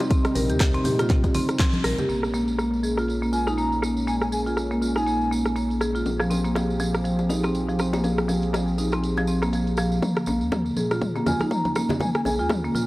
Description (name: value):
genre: afro house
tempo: 121 BPM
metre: 4/4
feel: swing 57% on 16ths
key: Bb dorian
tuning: A4 = 442 Hz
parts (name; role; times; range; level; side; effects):
- warm analog pad; sustained chords; 0.0-12.9 s; C3 to Ab4; -31 LUFS; equal; chorus, sidechain pumping
- deep house drum kit; drums; 0.0-12.6 s; crash cymbal, handclaps, hi-hat, rim click, toms; -30 LUFS; equal; low-pass filter on hats, low-pass filter on snare, low-pass filter on cymbals, low-pass filter on toms
- bongos; percussion; 0.0-1.3, 6.1-12.9 s; none; -32 LUFS; left 2 dB; none
- marimba with medium hard mallets; arpeggios; 0.1-12.8 s; F3 to Bb4; -24 LUFS; equal; vintage 12-bit sampler grit, sidechain pumping, low-pass filter, analog delay
- electronic kick drum; drums; 0.1-1.7, 10.0-12.6 s; none; -22 LUFS; equal; high-pass filter on kick
- tambourine; percussion; 0.1-12.9 s; none; -39 LUFS; right 3 dB; none
- dark detuned saw bass; bass; 0.4-12.9 s; Bb1 to Bb2; -30 LUFS; equal; sidechain pumping
- congas; percussion; 0.4-2.1, 10.3-12.9 s; none; -31 LUFS; right 1 dB; none
- breathy bass bansuri; melody; 3.3-5.3, 11.3-12.5 s; Ab5 to Bb5; -29 LUFS; left 1 dB; low-pass filter, analog delay
room: light reverb, small room ambience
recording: dry, gritty hardware recording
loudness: -21 LUFS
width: side -18 dB against mid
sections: 0.0-2.1 A section; 2.1-10.0 B section; 10.0-12.9 C section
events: band accent 1.6; filter sweep on marimba 2.1-10.0, 10.0-12.9; build-up 10.0-12.9; drum fill 10.0-12.9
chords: 0.0 Cm7/Bb; 2.1 Bbm7; 6.1 Fmadd9/Bb; 10.0 Bbm7